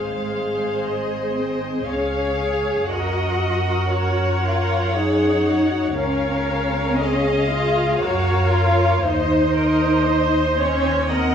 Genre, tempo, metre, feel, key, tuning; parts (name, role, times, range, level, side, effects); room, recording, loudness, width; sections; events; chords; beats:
classical, slow romantic movement for string orchestra; 58 BPM; 3/4; rubato; Db major; A4 = 441 Hz
muted chamber violin section; melody; 0.0-11.3 s; Eb5 to Gb5; -29 LUFS; left 4 dB
muted chamber violin section; second line; 0.0-11.3 s; Bb4 to Eb5; -25 LUFS; left 2 dB
muted chamber viola section; accompaniment; 0.0-11.3 s; Gb4 to C5; -25 LUFS; equal
muted chamber cello section; bass; 0.0-11.3 s; Ab3 to Ab4; -22 LUFS; right 1 dB
muted chamber double bass section; bass; 0.0-11.3 s; Ab1 to Gb2; -24 LUFS; equal
moderate recital hall reverb, RT60 1.6 s; recorded in a church or concert hall; -18 LUFS; side -8 dB against mid
0.0-11.3 A section
0.0 Ab; 1.9 Db; 2.9 Gb; 6.0 Db; 8.0 Gb; 9.1 Cm7/Eb
0.84 1.87 | 2.92 3.95 4.96 | 5.97 7.00 8.02 | 9.05 10.08 11.12